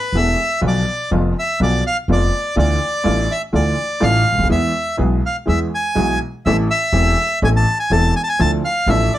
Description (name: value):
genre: tango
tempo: 124 BPM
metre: 4/4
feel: rubato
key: A harmonic minor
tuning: A4 = 441 Hz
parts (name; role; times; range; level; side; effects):
- bandoneon; melody; 0.0-9.2 s; B4 to A5; -19 LUFS; equal; none
- warm upright piano; accompaniment; 0.1-9.1 s; E1 to A4; -19 LUFS; equal; none
- upright bass; bass; 0.1-9.1 s; E1 to E2; -19 LUFS; equal; none
room: light reverb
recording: none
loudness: -15 LUFS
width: side -13 dB against mid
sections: 0.0-9.2 A section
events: none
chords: 0.0 Asus2; 0.6 Bdim; 2.6 Dmadd9; 4.5 E; 6.5 Am; 8.4 Dmadd9